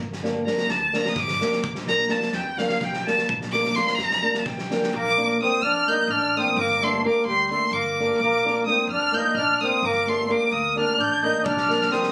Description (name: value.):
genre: balkan folk, Balkan wedding band.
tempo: 256 BPM (eighths).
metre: 7/8.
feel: straight.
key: Bb major.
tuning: A4 = 440 Hz.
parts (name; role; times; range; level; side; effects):
upright bass; bass; 0.0-11.9 s; G1 to F2; -37 LUFS; equal; none.
loose indie drum kit; percussion; 0.0-4.9, 11.5-12.1 s; kick drum, snare drum; -33 LUFS; equal; none.
flamenco guitar; accompaniment; 0.2-12.1 s; Bb3 to Bb4; -28 LUFS; equal; none.
rich violin; melody; 0.5-12.1 s; F5 to G6; -25 LUFS; equal; none.
mellow accordion; second line; 5.0-12.1 s; G3 to Eb4; -28 LUFS; equal; none.
room: moderate booth ambience, RT60 0.2 s.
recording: recorded on a phone in the room, club reverb, compression.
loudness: -22 LUFS.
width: mono.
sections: 0.0-4.9 A section; 4.9-12.1 B section.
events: violin solo 0.0-4.9.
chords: 0.0 Gm; 1.6 Bb; 6.6 Gm; 8.2 Bb; 9.8 Gm; 11.5 Bb.